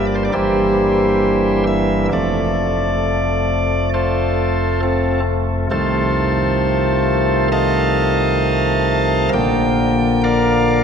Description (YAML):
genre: classical, chorale-style piece for pipe organ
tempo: 67 BPM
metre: 4/4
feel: straight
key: F major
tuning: A4 = 443 Hz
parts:
  - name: chamber organ, cornet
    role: solo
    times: 0.0-10.8 s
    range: F1 to A5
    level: -14 LUFS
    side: equal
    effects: none
room: wet church reverb, RT60 3.9 s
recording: minimal, uncompressed stereo recording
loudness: -14 LUFS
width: side -7 dB against mid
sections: 0.0-10.8 A section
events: none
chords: 0.3 C7/G; 2.1 F; 5.7 F7/C; 9.3 Bb